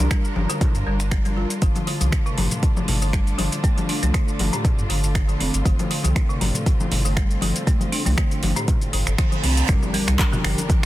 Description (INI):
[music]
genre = afro house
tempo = 119 BPM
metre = 4/4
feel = swing 54% on 16ths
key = unclear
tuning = A4 = 440 Hz
[part]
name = rich studio string section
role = sustained chords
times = 0.0-10.9 s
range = D3 to Bb4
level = -31 LUFS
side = right 1 dB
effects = sidechain pumping
[part]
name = folk marimba with hard mallets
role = arpeggios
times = 0.0-10.6 s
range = A2 to F4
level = -28 LUFS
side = left 1 dB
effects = sidechain pumping, digital delay
[part]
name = warm sub bass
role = bass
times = 0.0-10.5 s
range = F1 to G2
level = -22 LUFS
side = equal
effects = sidechain pumping
[part]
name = congas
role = percussion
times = 0.0-10.8 s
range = none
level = -29 LUFS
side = left 3 dB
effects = none
[part]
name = deep house drum kit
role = drums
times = 0.1-10.9 s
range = finger snaps, handclaps, hi-hat, shaker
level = -28 LUFS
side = right 1 dB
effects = overdrive, soft clipping on snare
[part]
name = electronic kick drum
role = drums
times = 0.1-10.8 s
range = none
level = -20 LUFS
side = equal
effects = overdrive
[part]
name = reverse cymbal and impact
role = sound effects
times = 9.0-10.9 s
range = none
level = -30 LUFS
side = right 2 dB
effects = none
[sound]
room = small room ambience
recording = dense, heavily limited modern master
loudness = -18 LUFS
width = side -15 dB against mid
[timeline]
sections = 0.0-9.7 A section; 9.7-10.9 B section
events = filter sweep on marimba 0.0-9.7; reverse cymbal 9.0-9.7; drop 9.7-10.9; impact 9.7-10.9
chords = 0.0 Gm7; 1.6 Dm; 9.7 Gm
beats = 0.11 0.61 1.12 | 1.62 2.12 2.63 3.13 | 3.64 4.14 4.65 5.15 | 5.66 6.16 6.66 7.17 | 7.67 8.18 8.68 9.18 | 9.69 10.19 10.70